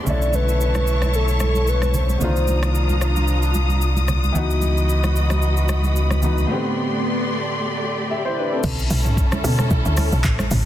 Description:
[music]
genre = amapiano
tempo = 112 BPM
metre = 4/4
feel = swing 55% on 16ths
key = unclear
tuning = A4 = 440 Hz
[part]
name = warm grand piano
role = accompaniment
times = 0.0-8.8 s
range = A2 to E5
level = -26 LUFS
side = left 1 dB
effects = none
[part]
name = warm studio string section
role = sustained chords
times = 0.0-10.7 s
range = D3 to Eb6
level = -25 LUFS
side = left 1 dB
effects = none
[part]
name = hollow clarinet-like synth lead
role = melody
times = 0.1-3.0 s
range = A4 to D5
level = -25 LUFS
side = left 1 dB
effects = chorus, low-pass filter, ping-pong delay
[part]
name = sub bass with octave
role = bass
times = 0.1-6.5 s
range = B1 to C#2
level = -19 LUFS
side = equal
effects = none
[part]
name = deep house drum kit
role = drums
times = 0.1-10.6 s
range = crash cymbal, handclaps, hi-hat, kick drum, rim click, shaker, toms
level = -26 LUFS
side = equal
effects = none
[part]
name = congas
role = percussion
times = 0.1-10.7 s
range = none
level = -28 LUFS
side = right 3 dB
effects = none
[part]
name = swell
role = sound effects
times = 5.6-7.6 s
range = none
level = -30 LUFS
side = right 1 dB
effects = none
[part]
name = woody log drum bass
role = bass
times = 8.6-10.7 s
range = A1 to B2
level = -20 LUFS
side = equal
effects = none
[sound]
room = light reverb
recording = dense, heavily limited modern master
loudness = -17 LUFS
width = side -12 dB against mid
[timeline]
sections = 0.0-8.6 A section; 8.6-10.7 B section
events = swell 5.6-8.6; break 6.5-8.6; drop 8.6-10.7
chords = 0.1 Bm11; 2.2 Cm11; 4.4 C#m11; 6.5 Am11; 8.6 Bm11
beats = | 0.07 0.60 1.14 1.67 | 2.21 2.75 3.28 3.82 | 4.35 4.89 5.42 5.96 | 6.50 7.03 7.57 8.10 | 8.64 9.17 9.71 10.24

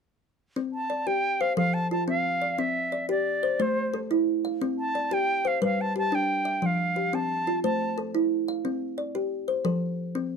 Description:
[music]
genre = southern african traditional, mbira-style interlocking cycle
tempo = 119 BPM (dotted quarters)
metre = 12/8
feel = straight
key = C major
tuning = A4 = 440 Hz
[part]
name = kalimba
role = arpeggios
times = 0.6-10.4 s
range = F3 to F5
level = -26 LUFS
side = left 1 dB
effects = none
[part]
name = silver concert flute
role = melody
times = 0.7-8.0 s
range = C5 to A5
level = -27 LUFS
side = right 2 dB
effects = plate reverb
[sound]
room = light reverb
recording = dark, warm production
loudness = -24 LUFS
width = side -6 dB against mid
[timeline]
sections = 0.6-10.4 A section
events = none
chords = 0.6 C5; 1.6 F; 2.6 C; 3.6 Am; 4.6 C5; 5.6 G; 6.6 F; 7.6 Am; 8.6 C5; 9.6 F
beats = | 0.56 1.06 1.57 2.08 | 2.58 3.09 3.60 4.10 | 4.61 5.11 5.62 6.12 | 6.62 7.13 7.63 8.14 | 8.64 9.14 9.65 10.15

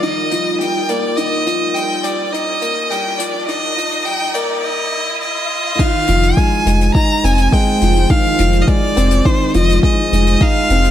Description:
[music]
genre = piano and strings electronica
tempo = 104 BPM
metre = 4/4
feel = straight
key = F dorian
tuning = A4 = 440 Hz
[part]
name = clear violin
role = melody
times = 0.0-10.9 s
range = C5 to Bb5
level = -18 LUFS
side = equal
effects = none
[part]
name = granular cloud pad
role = sustained chords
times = 0.0-10.9 s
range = G3 to C5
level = -26 LUFS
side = right 1 dB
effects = built-in reverb, sidechain pumping
[part]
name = felt-muted upright piano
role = riff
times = 0.0-10.9 s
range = Eb3 to Eb4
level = -19 LUFS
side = equal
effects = none
[part]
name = jazz brush drum kit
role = drums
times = 0.0-10.9 s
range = crash cymbal, hi-hat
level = -28 LUFS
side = left 6 dB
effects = high-pass filter on hats, high-pass filter on cymbals, high-pass filter on room
[part]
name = riser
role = sound effects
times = 1.1-5.8 s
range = none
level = -28 LUFS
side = right 1 dB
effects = none
[part]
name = warm sub bass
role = bass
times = 0.3-10.9 s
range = F1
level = -14 LUFS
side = equal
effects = tube saturation, sidechain pumping
[part]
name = electronic kick drum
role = drums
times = 5.8-10.5 s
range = none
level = -15 LUFS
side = equal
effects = overdrive
[sound]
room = light reverb, studio reverb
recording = high-pass filter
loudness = -13 LUFS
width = side -11 dB against mid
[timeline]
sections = 0.0-5.8 A section; 5.8-10.9 B section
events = build-up 0.0-5.8; riser 1.1-5.8; drop 5.8-10.9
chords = 0.0 Ebadd9/F; 5.8 Fm7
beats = 0.03 0.60 | 1.18 1.76 2.33 2.91 | 3.49 4.06 4.64 5.22 | 5.79 6.37 6.95 7.53 | 8.10 8.68 9.26 9.83 | 10.41

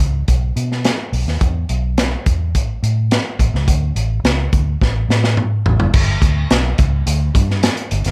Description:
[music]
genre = uptempo 1960s-style soul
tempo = 106 BPM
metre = 4/4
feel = straight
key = unclear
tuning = A4 = 441 Hz
[part]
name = vintage muted fingered electric bass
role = bass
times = 0.0-8.1 s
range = F#1 to B2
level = -20 LUFS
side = equal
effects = none
[part]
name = crunchy breakbeat drum kit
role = drums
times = 0.0-8.1 s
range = crash cymbal, hi-hat, kick drum, snare drum, toms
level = -19 LUFS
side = equal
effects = none
[sound]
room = light reverb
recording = none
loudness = -17 LUFS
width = mono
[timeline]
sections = 0.0-5.9 A section; 5.9-8.1 B section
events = drum fill 4.8-5.9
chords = none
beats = 0.28 0.85 | 1.42 1.98 2.55 3.12 | 3.68 4.25 4.81 5.38 | 5.95 6.51 7.08 7.64

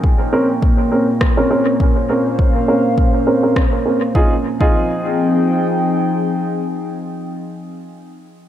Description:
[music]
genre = ambient dub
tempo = 102 BPM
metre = 4/4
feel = swing 55% on 16ths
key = F minor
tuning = A4 = 440 Hz
[part]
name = warbly tape-like pad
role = sustained chords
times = 0.0-7.3 s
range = Bb2 to G5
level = -18 LUFS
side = left 1 dB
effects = chorus, built-in reverb
[part]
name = electronic kick drum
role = drums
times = 0.0-4.8 s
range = none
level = -15 LUFS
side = equal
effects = none
[part]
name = clear upright piano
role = stabs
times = 0.3-8.0 s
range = C4 to Bb4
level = -18 LUFS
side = right 1 dB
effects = low-pass filter, dub echo
[part]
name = electronic rim click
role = drums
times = 1.2-3.7 s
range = none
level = -28 LUFS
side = equal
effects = dub echo
[sound]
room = light reverb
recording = echo-heavy mix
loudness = -13 LUFS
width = side -11 dB against mid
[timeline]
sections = 0.0-4.2 A section; 4.2-6.5 B section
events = filter sweep on upright piano 0.0-4.2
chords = 0.0 Bbmadd9; 4.2 Fm7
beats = 0.03 0.62 1.21 | 1.80 2.38 2.97 3.56 | 4.15 4.74 5.33 5.92

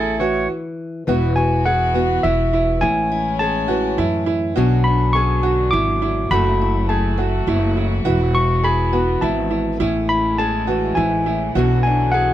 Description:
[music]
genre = acoustic folk duo or small band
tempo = 103 BPM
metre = 3/4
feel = straight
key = A major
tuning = A4 = 440 Hz
[part]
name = barky tine electric piano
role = melody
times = 0.0-12.3 s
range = E5 to D6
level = -21 LUFS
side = left 1 dB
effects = overdrive, plate reverb
[part]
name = pedal steel guitar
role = second line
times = 0.0-0.5 s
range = A4 to C#5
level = -23 LUFS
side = right 2 dB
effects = none
[part]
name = fingerpicked acoustic archtop guitar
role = accompaniment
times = 0.0-12.3 s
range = F#2 to A4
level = -24 LUFS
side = left 4 dB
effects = none
[part]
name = warm chamber string section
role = sustained chords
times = 0.0-12.3 s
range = A2 to F#4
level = -29 LUFS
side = left 2 dB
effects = none
[part]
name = bright upright piano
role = arpeggios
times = 0.0-12.3 s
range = E4 to G#4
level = -22 LUFS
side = right 5 dB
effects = none
[part]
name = upright bass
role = bass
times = 0.0-12.3 s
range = E1 to F#2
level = -21 LUFS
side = equal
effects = none
[sound]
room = light reverb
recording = none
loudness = -16 LUFS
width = side -12 dB against mid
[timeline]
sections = 0.0-1.1 A section; 1.1-12.3 A section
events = stop 0.5-1.1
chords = 0.0 A; 1.1 Esus2; 2.8 Amaj7; 4.6 Bmadd9; 6.3 F#m7; 8.1 Esus2; 9.8 Amaj7; 11.6 Bmadd9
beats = 0.50 | 1.08 1.66 2.24 | 2.82 3.40 3.98 | 4.57 5.15 5.73 | 6.31 6.89 7.48 | 8.06 8.64 9.22 | 9.81 10.39 10.97 | 11.56 12.14

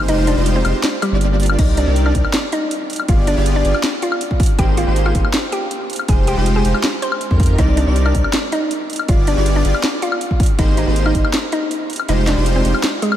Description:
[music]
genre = future bass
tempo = 160 BPM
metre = 4/4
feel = half-time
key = C minor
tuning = A4 = 440 Hz
[part]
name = airy dreamy lead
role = arpeggios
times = 0.0-12.8 s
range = Bb4 to D5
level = -28 LUFS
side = equal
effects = chorus, sidechain pumping, analog delay
[part]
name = soft supersaw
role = riff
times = 0.0-12.8 s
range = Ab3 to D5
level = -23 LUFS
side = equal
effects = sidechain pumping, analog delay
[part]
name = saturated sub bass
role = bass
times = 0.0-12.7 s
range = F1 to F2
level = -17 LUFS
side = equal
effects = tube saturation, sidechain pumping
[part]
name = mallet-like synth pluck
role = melody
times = 0.1-13.2 s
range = G3 to C6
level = -22 LUFS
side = equal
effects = chorus, sidechain pumping, analog delay
[part]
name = trap drum kit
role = drums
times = 0.1-13.2 s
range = crash cymbal, hi-hat, snare drum, woodblock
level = -22 LUFS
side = left 1 dB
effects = none
[part]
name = electronic kick drum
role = drums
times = 1.6-11.2 s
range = none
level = -16 LUFS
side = equal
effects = none
[sound]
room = moderate cathedral reverb, RT60 5.2 s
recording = dreamy mix soaked in reverb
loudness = -14 LUFS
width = side -12 dB against mid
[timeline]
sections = 0.0-1.6 A section; 1.6-13.2 A section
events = drop 0.0-1.6, 1.6-13.2; kick drops out 0.1-1.6, 12.1-13.2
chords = 0.1 Fm9; 0.8 Gm7; 1.6 Cm9; 3.1 G7b9; 4.6 Abmaj9; 6.1 Fm9; 7.6 Cm9; 9.1 G7b9; 10.6 Abmaj9; 12.1 Fm9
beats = | 0.09 0.46 0.84 1.21 | 1.59 1.96 2.34 2.71 | 3.09 3.46 3.84 4.21 | 4.59 4.96 5.34 5.71 | 6.09 6.46 6.84 7.21 | 7.59 7.96 8.34 8.71 | 9.09 9.46 9.84 10.21 | 10.59 10.96 11.34 11.71 | 12.09 12.46 12.84

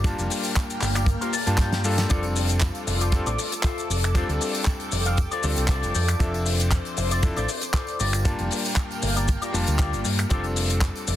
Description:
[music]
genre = nu-disco, nu disco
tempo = 117 BPM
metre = 4/4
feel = swing 53% on 16ths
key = F major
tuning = A4 = 440 Hz
[part]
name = bright electric grand piano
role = accompaniment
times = 0.0-11.2 s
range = F3 to A5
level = -30 LUFS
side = left 2 dB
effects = sidechain pumping, analog delay
[part]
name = lush unison pad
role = sustained chords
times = 0.0-11.2 s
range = Bb3 to F6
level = -33 LUFS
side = equal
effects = chorus, phaser, vintage 12-bit sampler grit, sidechain pumping
[part]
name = electric guitar with an envelope filter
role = riff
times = 0.0-11.1 s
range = F4 to A5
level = -32 LUFS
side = left 3 dB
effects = lush chorus, analog delay
[part]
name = fingered electric bass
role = bass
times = 0.0-11.2 s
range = F1 to G2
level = -25 LUFS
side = equal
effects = none
[part]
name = kick drum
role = drums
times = 0.0-10.9 s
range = none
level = -23 LUFS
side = equal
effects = soft clipping on snare
[part]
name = tambourine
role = percussion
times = 0.0-11.1 s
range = none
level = -39 LUFS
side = right 4 dB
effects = none
[part]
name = damped 70s drum kit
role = drums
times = 0.1-11.2 s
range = finger snaps, handclaps, hi-hat, shaker, snare drum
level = -28 LUFS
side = left 3 dB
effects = soft clipping on snare
[sound]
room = small room reverb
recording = dense, heavily limited modern master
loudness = -21 LUFS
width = side -12 dB against mid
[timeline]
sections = 0.0-11.2 A section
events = clean electric guitar fill 1.1-2.1; drum fill 1.6-2.1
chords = 0.0 Gm7; 2.1 F6; 5.9 Dm7/F; 8.0 Gm7; 10.3 F6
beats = | 0.05 0.56 1.08 1.59 | 2.10 2.62 3.13 3.64 | 4.15 4.67 5.18 5.69 | 6.21 6.72 7.23 7.74 | 8.26 8.77 9.28 9.79 | 10.31 10.82

